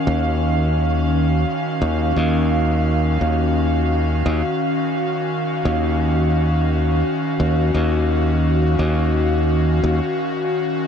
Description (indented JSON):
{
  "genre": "ambient dub",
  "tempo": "86 BPM",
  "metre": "4/4",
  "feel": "straight",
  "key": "Eb minor",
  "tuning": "A4 = 440 Hz",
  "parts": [
    { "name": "airy breathy pad", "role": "sustained chords", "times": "0.0-10.9 s", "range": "Eb3 to F5", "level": "-20 LUFS", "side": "left 1 dB", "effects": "chorus" },
    { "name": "modern bright fingered electric bass", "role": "bass", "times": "0.1-10.0 s", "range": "Eb2", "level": "-18 LUFS", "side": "equal", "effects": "none" }
  ],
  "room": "moderate huge ambient reverb, RT60 6.8 s",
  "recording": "none",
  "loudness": "-17 LUFS",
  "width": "side -7 dB against mid",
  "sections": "0.0-10.9 A section",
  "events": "none",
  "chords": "0.0 Ebm9",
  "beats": "| 0.07 0.77 1.47 2.16 | 2.86 3.56 4.26 4.96 | 5.65 6.35 7.05 7.75 | 8.44 9.14 9.84 10.54"
}